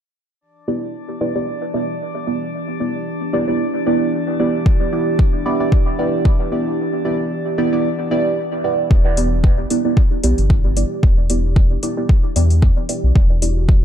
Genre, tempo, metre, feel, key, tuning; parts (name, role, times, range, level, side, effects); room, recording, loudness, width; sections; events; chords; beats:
dub techno; 113 BPM; 4/4; swing 55% on 16ths; E minor; A4 = 440 Hz
warbly tape-like pad; sustained chords; 1.6-13.8 s; E3 to G4; -26 LUFS; equal; chorus, built-in reverb, vintage 12-bit sampler grit, sidechain pumping
drifting glass-harmonics texture; texture; 0.7-8.9 s; D4 to D5; -32 LUFS; right 2 dB; chorus, built-in reverb, sidechain pumping
deep mellow chord stab; stabs; 0.7-13.7 s; B3 to D5; -20 LUFS; right 2 dB; chorus, phaser, sidechain pumping, dub echo
electronic kick drum; drums; 4.7-13.8 s; -14 LUFS; equal; overdrive, small room reverb
round analog bass; bass; 8.9-13.8 s; E1 to E2; -17 LUFS; equal; sidechain pumping
electronic hi-hat; drums; 9.2-13.5 s; -26 LUFS; left 3 dB; overdrive, low-pass filter on hats, small room reverb
light reverb; dark, warm production; -15 LUFS; side -10 dB against mid
0.4-8.9 A section; 8.9-13.8 B section
break 6.8-8.9; filter sweep on synth stab 8.9-13.8
0.4 Em7
| 0.41 0.94 1.48 2.00 | 2.54 3.07 3.60 4.13 | 4.66 5.19 5.72 6.25 | 6.78 7.32 7.85 8.38 | 8.91 9.44 9.97 10.50 | 11.03 11.56 12.09 12.62 | 13.16 13.69